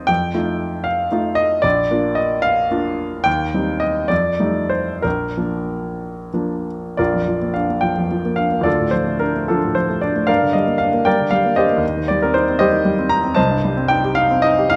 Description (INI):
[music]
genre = classical, romantic character piece for solo piano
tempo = 58-81 BPM (dotted quarters)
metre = 6/8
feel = rubato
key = Bb major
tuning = A4 = 440 Hz
[part]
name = clear grand piano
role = solo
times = 0.0-14.8 s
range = Bb1 to Bb5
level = -18 LUFS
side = equal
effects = none
[sound]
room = moderate recital hall reverb, RT60 1.6 s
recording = close, detailed microphones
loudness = -18 LUFS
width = mono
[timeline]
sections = 0.0-7.0 A section; 7.0-14.8 A section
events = none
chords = 0.1 F7; 1.6 Bb; 3.3 Cm/Eb; 4.1 F9; 5.0 Bb; 8.7 Dm; 10.3 Gm; 11.8 Cm/Eb; 13.4 Am7b5/C